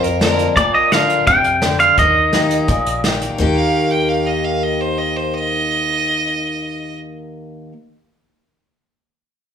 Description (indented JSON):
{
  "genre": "honky-tonk and classic country",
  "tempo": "170 BPM",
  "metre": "4/4",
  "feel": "straight",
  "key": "Eb major",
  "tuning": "A4 = 440 Hz",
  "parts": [
    { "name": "bright fiddle", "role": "second line", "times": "0.0-0.5, 3.6-7.0 s", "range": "Bb4 to G5", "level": "-20 LUFS", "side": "right 3 dB", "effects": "plate reverb, slapback echo" },
    { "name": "picked steel-string acoustic guitar", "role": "accompaniment", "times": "0.0-7.7 s", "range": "F2 to G4", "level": "-20 LUFS", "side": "left 2 dB", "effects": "plate reverb, slapback echo" },
    { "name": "pedal steel guitar", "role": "sustained chords", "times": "0.0-0.6 s", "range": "none", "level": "barely audible", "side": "none", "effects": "none" },
    { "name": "upright bass", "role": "bass", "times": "0.0-7.7 s", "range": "Bb1 to F2", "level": "-26 LUFS", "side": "equal", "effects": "none" },
    { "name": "unplugged drum kit", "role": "drums", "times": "0.0-3.3 s", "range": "hi-hat, kick drum, snare drum", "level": "-20 LUFS", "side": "right 1 dB", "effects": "none" },
    { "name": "twangy electric guitar", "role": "melody", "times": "0.6-3.0 s", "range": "D5 to G5", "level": "-13 LUFS", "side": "right 1 dB", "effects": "plate reverb, slapback echo, tape echo" }
  ],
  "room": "moderate club reverb, RT60 0.8 s",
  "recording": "live gig heard through the venue's PA, club ambience",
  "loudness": "-14 LUFS",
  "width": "side -8 dB against mid",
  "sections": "0.0-3.4 A section; 3.4-6.2 B section",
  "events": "none",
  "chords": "0.0 Bb; 2.0 Eb"
}